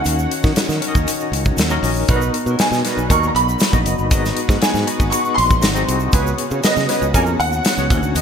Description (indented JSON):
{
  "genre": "polished 1980s jazz-funk pop",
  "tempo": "118 BPM",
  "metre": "4/4",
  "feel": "straight",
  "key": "unclear",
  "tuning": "A4 = 437 Hz",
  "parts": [
    { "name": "warm baby grand piano", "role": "melody", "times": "0.0-8.2 s", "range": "Eb5 to Db6", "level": "-21 LUFS", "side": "right 1 dB", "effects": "ensemble chorus" },
    { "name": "barky tine electric piano", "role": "accompaniment", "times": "0.0-8.2 s", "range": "A#3 to Eb5", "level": "-23 LUFS", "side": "left 3 dB", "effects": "overdrive, fast tremolo, wide subtle chorus" },
    { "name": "lush unison pad", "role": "sustained chords", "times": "0.0-8.2 s", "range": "B2 to Cb5", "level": "-28 LUFS", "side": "equal", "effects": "chorus" },
    { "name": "modern bright fingered electric bass", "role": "bass", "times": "0.0-8.2 s", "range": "F#1 to Eb3", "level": "-21 LUFS", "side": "equal", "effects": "none" },
    { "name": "modern studio drum kit", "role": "drums", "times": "0.1-8.2 s", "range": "hi-hat, kick drum, snare drum", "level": "-19 LUFS", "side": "equal", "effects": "gated reverb" },
    { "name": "egg shaker", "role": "percussion", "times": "0.1-8.2 s", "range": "none", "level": "-33 LUFS", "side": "right 9 dB", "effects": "none" },
    { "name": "mellow horn section", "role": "second line", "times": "2.1-7.3 s", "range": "Bb3 to Db5", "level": "-26 LUFS", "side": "right 6 dB", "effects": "none" }
  ],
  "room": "moderate plate reverb, RT60 1.7 s, small room ambience",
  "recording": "bright 1980s-style digital production",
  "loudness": "-15 LUFS",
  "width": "side -7 dB against mid",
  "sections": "0.0-8.2 A section",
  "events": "none",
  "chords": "0.0 Ebm7; 2.1 Bmaj7; 4.1 Abm7; 5.6 Ab7; 6.1 Db7sus4"
}